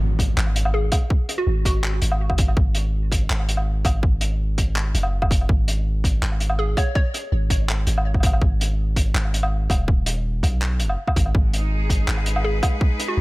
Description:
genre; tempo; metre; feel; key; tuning
half-time drum and bass; 164 BPM; 4/4; half-time; G# minor; A4 = 441 Hz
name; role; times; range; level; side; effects
long sustained 808-style bass; bass; 0.0-13.2 s; D#1 to B1; -21 LUFS; equal; none
impact; sound effects; 0.0-1.1 s; none; -31 LUFS; equal; none
crunchy breakbeat drum kit; drums; 0.2-13.1 s; handclaps, hi-hat, woodblock; -26 LUFS; equal; none
electronic kick drum; drums; 0.2-12.9 s; none; -20 LUFS; equal; none
hollow square pluck; melody; 0.7-2.2, 6.6-7.3, 12.4-13.2 s; F#4 to C#5; -28 LUFS; equal; chorus, vintage 12-bit sampler grit, digital delay
bright studio cello section; sustained chords; 11.3-13.2 s; G#3 to B4; -29 LUFS; equal; sidechain pumping
room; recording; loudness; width
small room ambience; none; -18 LUFS; side -21 dB against mid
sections
0.0-13.2 A section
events
impact 0.0-1.1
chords
0.0 G#m

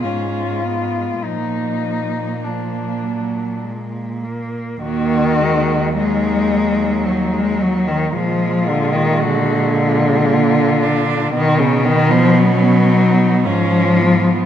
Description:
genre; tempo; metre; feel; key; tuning
classical, lyrical piece for cello ensemble; 49-58 BPM; 3/4; rubato; Eb minor; A4 = 440 Hz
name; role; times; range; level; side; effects
rich cello; melody; 0.0-14.5 s; Db4 to Gb4; -25 LUFS; left 6 dB; none
clear cello; second line; 0.0-14.5 s; Gb3 to D4; -22 LUFS; right 6 dB; none
rich cello; accompaniment; 0.0-14.5 s; Db3 to Bb3; -17 LUFS; left 2 dB; none
warm cello; bass; 0.0-14.5 s; Eb2 to B2; -22 LUFS; right 3 dB; none
room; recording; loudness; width
moderate scoring stage reverb, RT60 1.8 s; none; -14 LUFS; side -10 dB against mid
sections
0.0-4.8 A section; 4.8-14.5 A section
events
none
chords
0.0 Fdim/Ab; 1.2 Bb; 4.8 Ebm; 8.1 Bb7; 11.3 B; 13.4 Fdim/Ab

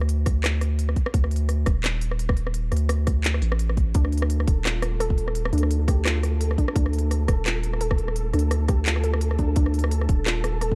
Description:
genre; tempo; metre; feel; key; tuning
half-time drum and bass; 171 BPM; 4/4; swing 57% on 16ths, half-time; D phrygian; A4 = 443 Hz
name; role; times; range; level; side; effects
long sustained 808-style bass; bass; 0.0-10.8 s; Eb1 to D2; -26 LUFS; equal; none
drum and bass drum kit; drums; 0.0-10.7 s; handclaps, hi-hat, rim click; -31 LUFS; equal; studio reverb
electronic kick drum; drums; 0.3-10.8 s; none; -24 LUFS; equal; studio reverb
warbly dusty pluck; arpeggios; 3.9-10.8 s; D4 to A4; -33 LUFS; equal; chorus, tape echo
flickering grainy texture; texture; 4.4-10.8 s; A4; -38 LUFS; equal; built-in reverb
room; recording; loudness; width
little or no reverb; dark, warm production; -23 LUFS; mono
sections
0.0-10.8 A section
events
none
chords
0.0 D5

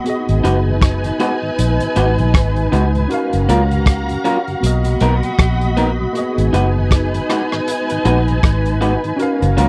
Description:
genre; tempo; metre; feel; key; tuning
lovers rock reggae; 79 BPM; 4/4; swing 59% on 16ths; unclear; A4 = 445 Hz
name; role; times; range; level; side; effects
soft string machine; second line; 0.0-9.7 s; D#4 to B5; -24 LUFS; equal; ensemble chorus
tine electric piano; accompaniment; 0.0-9.7 s; A#3 to G#5; -26 LUFS; equal; analog chorus
crunchy breakbeat drum kit; drums; 0.1-9.7 s; hi-hat, kick drum, rim click; -20 LUFS; equal; none
mellow tonewheel organ; accompaniment; 0.3-9.7 s; F#2 to F#4; -29 LUFS; equal; none
vintage muted fingered electric bass; bass; 0.3-9.7 s; F#1 to C#2; -19 LUFS; equal; none
electric guitar through a small old amp; stabs; 0.4-9.7 s; B3 to B4; -20 LUFS; equal; none
room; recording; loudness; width
small room ambience; dry, close 1970s-style studio recording; -16 LUFS; mono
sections
0.0-9.7 A section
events
tine electric piano fill 2.0-3.1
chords
0.1 G#m7; 3.1 F#maj7; 4.6 Bmaj7; 6.1 G#m7

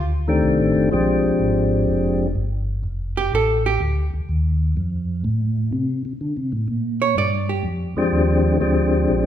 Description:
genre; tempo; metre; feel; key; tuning
jazz; 125 BPM; 4/4; swing 67% on 8ths; unclear; A4 = 440 Hz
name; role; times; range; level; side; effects
mellow tonewheel organ; bass; 0.0-9.3 s; F1 to D3; -21 LUFS; equal; chorus vibrato, slow rotary speaker
percussive tonewheel organ; melody; 0.3-2.3, 8.0-9.3 s; Eb3 to G4; -18 LUFS; left 2 dB; slow rotary speaker
archtop guitar, miked and amplified; accompaniment; 3.2-3.8, 7.0-7.6 s; G4 to D5; -22 LUFS; right 4 dB; none
room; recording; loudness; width
moderate recital hall reverb, RT60 1.4 s; recorded in a church or concert hall; -18 LUFS; side -10 dB against mid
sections
0.0-9.3 A section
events
hollow-body jazz guitar solo 0.0-9.3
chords
0.0 F13; 0.9 Bb13; 2.8 F6; 6.7 Bb13

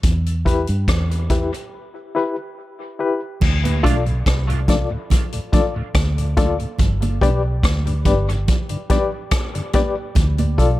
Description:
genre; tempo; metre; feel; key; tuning
dub reggae; 71 BPM; 4/4; straight; D dorian; A4 = 440 Hz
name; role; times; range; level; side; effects
vintage muted fingered electric bass; bass; 0.0-10.8 s; G1 to G2; -20 LUFS; equal; none
vintage drum kit; drums; 0.0-10.8 s; crash cymbal, hi-hat, kick drum, rim click; -19 LUFS; equal; none
barky reed electric piano; stabs; 0.5-10.8 s; E4 to D5; -24 LUFS; left 4 dB; overdrive, fast tremolo, high-pass filter, dub echo
congas; percussion; 3.4-10.8 s; none; -29 LUFS; right 6 dB; dub echo
mellow tonewheel organ; accompaniment; 3.6-10.5 s; D2 to D4; -26 LUFS; left 2 dB; slow rotary speaker
semi-hollow electric guitar; accompaniment; 3.8-4.0 s; A3 to F4; -29 LUFS; right 6 dB; lush chorus, dub echo
room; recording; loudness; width
light reverb, studio ambience; none; -17 LUFS; side -16 dB against mid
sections
0.0-3.4 A section; 3.4-10.8 B section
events
break 0.0-3.4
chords
0.0 Em; 3.4 Dm; 6.8 G; 10.2 Dm

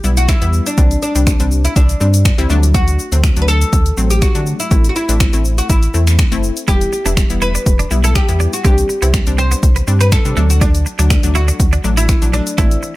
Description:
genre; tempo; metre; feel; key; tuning
dance-pop; 122 BPM; 4/4; straight; unclear; A4 = 440 Hz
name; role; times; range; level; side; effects
oud; melody; 0.0-13.0 s; D4 to C5; -21 LUFS; equal; digital delay
analog pluck; accompaniment; 0.0-12.8 s; E3 to E4; -22 LUFS; left 3 dB; chorus, sidechain pumping
sub bass with octave; bass; 0.0-12.8 s; E1 to D3; -14 LUFS; equal; sidechain pumping
deep house drum kit; drums; 0.0-12.9 s; finger snaps, hi-hat, kick drum, shaker; -14 LUFS; equal; none
twelve-string electric guitar; riff; 6.7-12.9 s; A3 to E4; -24 LUFS; right 6 dB; wide subtle chorus
room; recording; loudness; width
little or no reverb; none; -11 LUFS; side -18 dB against mid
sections
0.0-13.0 A section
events
none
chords
0.0 Em; 0.8 Csus2; 2.5 D; 4.7 Am; 6.7 Em; 8.6 Csus2; 10.4 D

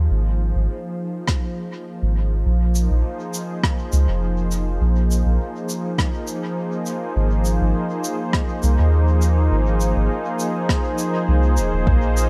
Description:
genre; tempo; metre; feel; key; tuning
ambient dub; 102 BPM; 4/4; straight; unclear; A4 = 440 Hz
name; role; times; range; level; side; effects
warm analog pad; sustained chords; 0.0-12.3 s; F3 to C5; -26 LUFS; equal; chorus, tremolo
soft dub sub bass; bass; 0.0-12.3 s; Eb1 to Eb2; -20 LUFS; equal; none
electronic kick drum; drums; 1.3-12.0 s; none; -24 LUFS; equal; overdrive
rim click and shaker; drums; 1.3-12.3 s; none; -30 LUFS; equal; dub echo
room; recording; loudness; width
light reverb, small room reverb; none; -21 LUFS; mono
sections
0.0-11.9 A section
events
none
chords
0.0 Abadd9; 2.5 Bb7(no3); 7.2 Abadd9

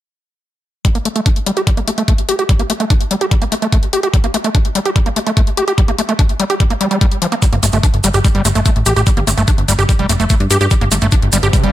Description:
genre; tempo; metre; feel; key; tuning
psychedelic trance; 146 BPM; 4/4; straight; G minor; A4 = 442 Hz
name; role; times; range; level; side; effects
overdriven acid bass; riff; 0.8-11.7 s; F3 to G4; -17 LUFS; equal; distortion, auto-pan, sidechain pumping, tape echo
electronic hi-hat; drums; 0.8-11.7 s; none; -23 LUFS; left 3 dB; none
electronic kick drum; drums; 0.8-11.6 s; none; -13 LUFS; equal; none
maracas; percussion; 7.4-11.6 s; none; -21 LUFS; right 5 dB; none
plucky analog bass; bass; 7.5-11.7 s; F1 to G2; -15 LUFS; equal; tube saturation
riser; sound effects; 11.1-11.7 s; none; -24 LUFS; right 3 dB; none
room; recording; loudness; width
digital ambience; none; -12 LUFS; side -13 dB against mid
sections
0.8-11.7 A section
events
filter sweep on acid bass 0.8-11.7; riser 11.1-11.7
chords
0.8 G5

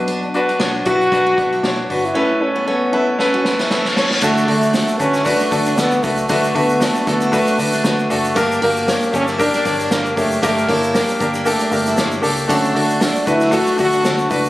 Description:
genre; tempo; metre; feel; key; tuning
piano-driven pop; 116 BPM; 4/4; swing 56% on 16ths; D major; A4 = 440 Hz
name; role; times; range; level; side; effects
bright concert grand piano; accompaniment; 0.0-14.5 s; G2 to C#5; -18 LUFS; left 1 dB; none
vintage muted picked electric bass; bass; 0.0-14.5 s; F#1 to D2; -26 LUFS; equal; none
picked steel-string acoustic guitar; riff; 0.1-14.2 s; Bb3 to F#4; -27 LUFS; right 3 dB; none
unplugged drum kit; drums; 0.1-14.4 s; crash cymbal, hi-hat, kick drum, snare drum; -23 LUFS; equal; none
warm French horn; melody; 0.9-14.5 s; A3 to F#4; -19 LUFS; equal; none
reverse cymbal; sound effects; 3.5-4.2 s; none; -23 LUFS; left 2 dB; none
tube shaker; percussion; 4.2-14.5 s; none; -34 LUFS; left 1 dB; none
room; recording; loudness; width
moderate large studio reverb, RT60 1.0 s, small room ambience; recorded on a phone in the room, studio reverb; -14 LUFS; side -16 dB against mid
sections
0.0-4.2 A section; 4.2-14.5 B section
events
drum fill 3.2-4.2; reverse cymbal 3.5-4.2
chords
0.0 Bm; 2.2 Aadd9; 4.2 D; 8.4 Gm; 12.5 D

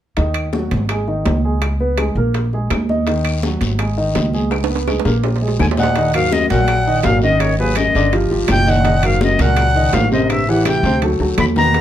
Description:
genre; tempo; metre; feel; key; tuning
Afro-Cuban jazz; 166 BPM; 4/4; straight; Eb minor; A4 = 441 Hz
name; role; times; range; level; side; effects
warm baby grand piano; accompaniment; 0.2-11.8 s; Cb3 to Eb5; -20 LUFS; equal; none
upright bass; bass; 0.2-11.8 s; Gb1 to E2; -19 LUFS; equal; none
bongos; percussion; 0.2-11.8 s; none; -26 LUFS; left 6 dB; none
congas; percussion; 0.2-11.8 s; none; -24 LUFS; right 1 dB; none
timbales; percussion; 0.2-11.8 s; none; -25 LUFS; right 8 dB; none
claves; percussion; 0.4-11.6 s; none; -30 LUFS; left 5 dB; none
guiro; percussion; 3.1-11.8 s; none; -33 LUFS; left 6 dB; none
bright reedy silver concert flute; melody; 5.6-11.8 s; Cb5 to Cb6; -18 LUFS; equal; plate reverb
warm bass clarinet; second line; 5.6-11.8 s; Eb2 to Eb3; -22 LUFS; left 6 dB; none
room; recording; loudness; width
moderate studio reverb, RT60 0.5 s; none; -14 LUFS; side -11 dB against mid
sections
0.2-6.0 A section; 6.0-11.8 B section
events
drum fill 4.5-6.0, 10.7-11.7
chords
0.2 Ebm; 0.9 Ab5; 1.6 Db5; 2.3 Bb7sus4; 3.1 Ebm; 3.8 Ab5; 4.5 Db5; 5.2 Ebmadd11/Bb; 6.0 Ebm; 7.4 Ab5; 8.1 G7alt; 8.9 Gb6; 10.3 Am7; 11.0 Dadd9

